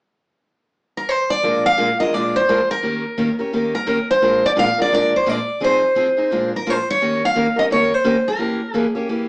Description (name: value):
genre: jazz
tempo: 173 BPM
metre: 4/4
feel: swing 61% on 8ths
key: Bb mixolydian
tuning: A4 = 440 Hz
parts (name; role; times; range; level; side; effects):
- picked steel-string acoustic guitar; melody; 1.0-8.9 s; Bb4 to F5; -17 LUFS; equal; none
- picked steel-string acoustic guitar; accompaniment; 1.4-9.3 s; Bb2 to Bb4; -20 LUFS; equal; none
room: wet studio ambience, RT60 0.5 s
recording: heard from further back in the room, small speaker sound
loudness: -15 LUFS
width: side -32 dB against mid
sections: 0.0-1.4 A section; 1.4-9.3 B section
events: none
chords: 0.0 N.C.; 1.4 Bb7; 2.8 Eb7; 4.2 Bb7; 5.6 Fm7; 6.3 Bb7; 7.0 Eb7; 8.4 Edim7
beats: | 0.04 0.39 0.74 1.09 | 1.44 1.78 2.13 2.48 | 2.83 3.17 3.52 3.87 | 4.21 4.56 4.91 5.26 | 5.61 5.95 6.30 6.65 | 7.00 7.34 7.69 8.04 | 8.39 8.73 9.08